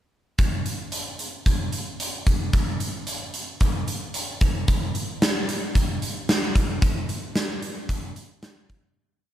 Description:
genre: rock.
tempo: 112 BPM.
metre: 4/4.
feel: straight.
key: none.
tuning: none.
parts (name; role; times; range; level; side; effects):
big rock drum kit; drums; 0.4-8.8 s; hi-hat, kick drum, snare drum; -23 LUFS; equal; none.
room: little or no reverb.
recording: dark, warm production.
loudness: -23 LUFS.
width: side -12 dB against mid.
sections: 0.4-9.0 A section.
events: fade-out 6.8-9.0.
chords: none.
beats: | 0.39 0.93 1.47 2.00 | 2.54 3.08 3.61 4.15 | 4.68 5.22 5.75 6.29 | 6.82 7.36 7.89 8.43.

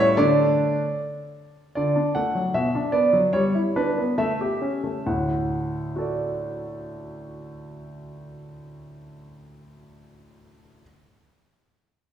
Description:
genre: classical-period piano sonatina.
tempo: 67-78 BPM.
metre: 2/4.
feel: straight.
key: D major.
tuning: A4 = 439 Hz.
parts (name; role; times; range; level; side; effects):
clear grand piano; solo; 0.0-10.8 s; D2 to F#5; -22 LUFS; equal; none.
room: wet recital hall reverb, RT60 1.5 s.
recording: heard from further back in the room.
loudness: -21 LUFS.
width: side -9 dB against mid.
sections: 0.0-1.8 A section; 1.8-5.1 B section; 5.1-8.6 C section.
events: slowing down 1.0-5.1.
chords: 0.2 D5; 1.8 D; 2.5 Bm; 3.3 Em7/G; 4.2 A7; 5.1 D.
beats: | 0.18 0.98 | 1.77 2.54 | 3.33 4.17 | 5.05 5.93 | 6.82 7.71.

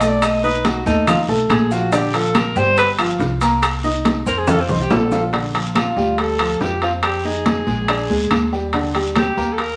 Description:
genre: Afro-Cuban jazz.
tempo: 141 BPM.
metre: 4/4.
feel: straight.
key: Bb major.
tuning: A4 = 440 Hz.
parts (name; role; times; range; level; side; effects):
clear alto saxophone; melody; 0.0-9.8 s; C4 to D#5; -23 LUFS; equal; none.
warm baby grand piano; accompaniment; 0.0-9.7 s; D3 to F6; -24 LUFS; equal; none.
upright bass; bass; 0.0-9.8 s; G1 to F2; -27 LUFS; equal; none.
bongos; percussion; 0.0-9.8 s; none; -31 LUFS; equal; none.
congas; percussion; 0.0-9.8 s; none; -25 LUFS; equal; none.
guiro; percussion; 0.0-9.8 s; none; -37 LUFS; equal; none.
maracas; percussion; 0.0-5.3 s; none; -40 LUFS; equal; none.
timbales; percussion; 0.0-9.8 s; none; -24 LUFS; equal; none.
claves; percussion; 0.2-9.4 s; none; -36 LUFS; equal; none.
room: wet studio reverb, RT60 0.8 s.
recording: none.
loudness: -18 LUFS.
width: mono.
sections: 0.0-5.3 A section; 5.3-9.8 B section.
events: alto saxophone solo 0.0-5.3; drum fill 4.5-5.3.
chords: 0.2 B7; 1.9 Bb6; 2.8 Gm7; 3.6 Cm7; 4.5 F5; 5.3 Bb69; 7.0 Fm7; 7.9 Bb7; 8.7 Ebmaj7.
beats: | 0.22 0.65 1.07 1.50 | 1.93 2.35 2.78 3.20 | 3.63 4.05 4.48 4.91 | 5.33 5.76 6.18 6.61 | 7.03 7.46 7.88 8.31 | 8.74 9.16 9.59.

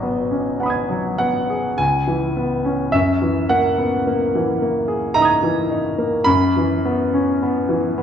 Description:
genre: classical, impressionist solo piano.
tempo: 51-55 BPM.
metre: 3/4.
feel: rubato.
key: unclear.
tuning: A4 = 441 Hz.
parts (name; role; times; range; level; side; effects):
clear grand piano; solo; 0.0-8.0 s; G#1 to G#6; -17 LUFS; equal; none.
room: wet recital hall reverb, RT60 1.3 s.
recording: dark, warm production.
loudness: -17 LUFS.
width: side -8 dB against mid.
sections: 0.0-8.0 A section.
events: none.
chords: 0.0 G#m7; 1.8 C#m7; 2.9 F#13; 6.3 Esus2/F#.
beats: 0.62 1.79 | 2.94 4.07 5.17 | 6.28 7.41.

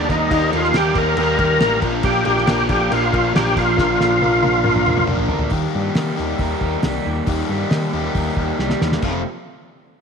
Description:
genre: classic rock.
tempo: 138 BPM.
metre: 4/4.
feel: straight.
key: unclear.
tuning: A4 = 440 Hz.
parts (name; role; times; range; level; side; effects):
overdriven tonewheel organ; melody; 0.0-5.1 s; Eb4 to Bb4; -18 LUFS; equal; slow rotary speaker, chorus vibrato, slapback echo.
barky reed electric piano; accompaniment; 0.0-5.5 s; Bb3 to C5; -29 LUFS; left 10 dB; none.
crunchy overdriven guitar; riff; 0.0-9.2 s; F2 to Bb4; -24 LUFS; left 12 dB; none.
overdriven semi-hollow guitar; riff; 0.0-9.2 s; F2 to Bb4; -25 LUFS; right 11 dB; none.
overdriven picked electric bass; bass; 0.0-9.2 s; F1 to Eb3; -24 LUFS; equal; none.
cloth-damped thuddy drum kit; drums; 0.1-9.1 s; crash cymbal, hi-hat, kick drum, snare drum, toms; -23 LUFS; equal; none.
room: moderate echo chamber reverb, RT60 1.9 s, studio reverb.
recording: 1960s-style stereo with parts hard left and right.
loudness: -16 LUFS.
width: side -6 dB against mid.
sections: 0.0-5.5 A section; 5.5-9.0 B section.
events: drum fill 3.8-5.5, 8.6-9.0.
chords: 0.0 Eb; 1.8 Bb; 5.5 Eb; 9.0 F.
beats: | 0.31 0.74 1.18 1.61 | 2.05 2.48 2.92 3.35 | 3.79 4.22 4.66 5.09 | 5.53 5.96 6.40 6.84 | 7.28 7.71 8.15 8.59 | 9.03.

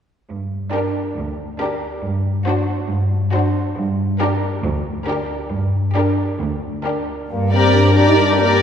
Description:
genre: classical, dramatic, fast romantic movement for symphony orchestra.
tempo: 137 BPM.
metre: 4/4.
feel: straight.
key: G minor.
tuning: A4 = 440 Hz.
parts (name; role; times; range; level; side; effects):
rich symphonic cello section; bass; 0.3-8.6 s; D2 to G2; -20 LUFS; equal; none.
rich symphonic violin section; melody; 0.7-8.6 s; Bb4 to D5; -26 LUFS; left 2 dB; none.
clear symphonic violin section; second line; 0.7-8.6 s; F#4 to Bb4; -25 LUFS; left 1 dB; none.
clear symphonic viola section; accompaniment; 0.7-8.6 s; D4 to G4; -24 LUFS; right 2 dB; none.
mellow French horn section; sustained chords; 7.3-8.6 s; Bb3 to Eb4; -17 LUFS; left 1 dB; none.
room: wet concert hall reverb, RT60 2.2 s.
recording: minimal, uncompressed stereo recording.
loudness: -16 LUFS.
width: side -8 dB against mid.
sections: 0.3-7.3 A section; 7.3-8.6 B section.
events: none.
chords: 0.3 Gm; 2.0 D7/G; 3.8 Gm.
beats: | 0.29 0.73 1.17 1.61 | 2.04 2.48 2.91 3.34 | 3.78 4.21 4.64 5.08 | 5.52 5.96 6.40 6.85 | 7.30 7.75 8.19.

